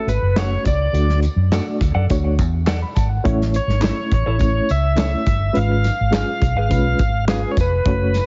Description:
uptempo 1960s-style soul; 104 BPM; 4/4; straight; A4 = 442 Hz
bright tonewheel organ; melody; 0.0-8.3 s; G#4 to E#5; -26 LUFS; equal; overdrive, slow rotary speaker
barky reed electric piano; accompaniment; 0.0-8.2 s; G#3 to B5; -26 LUFS; equal; overdrive, fast tremolo
vintage muted fingered electric bass; bass; 0.1-8.2 s; E#1 to F#2; -21 LUFS; equal
natural country drum kit; drums; 0.1-8.3 s; hi-hat, kick drum, snare drum; -24 LUFS; equal
tambourine and handclaps; percussion; 0.1-8.3 s; -38 LUFS; equal
electric guitar through a small old amp; stabs; 0.4-7.4 s; E4 to F#5; -32 LUFS; equal; analog delay
small room ambience; heavily compressed radio sound, cassette tape, nothing above 7.6 kHz; -18 LUFS; mono
0.0-8.3 A section
0.0 F#m; 0.9 D; 3.2 A; 5.6 C#7/G#

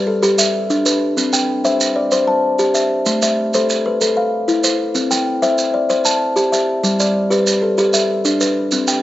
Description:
southern african traditional, mbira-style interlocking cycle; 127 BPM (dotted quarters); 12/8; straight; C major; A4 = 440 Hz
kalimba; arpeggios; 0.0-9.0 s; G3 to A5; -15 LUFS; left 1 dB
maracas; percussion; 0.2-9.0 s; -20 LUFS; right 4 dB
wet lush hall reverb, RT60 2.3 s; rough home demo mix, nothing above 7.8 kHz; -14 LUFS; side -14 dB against mid
0.0-9.0 A section
0.0 G; 1.2 C; 3.1 Am; 5.0 C; 6.8 G

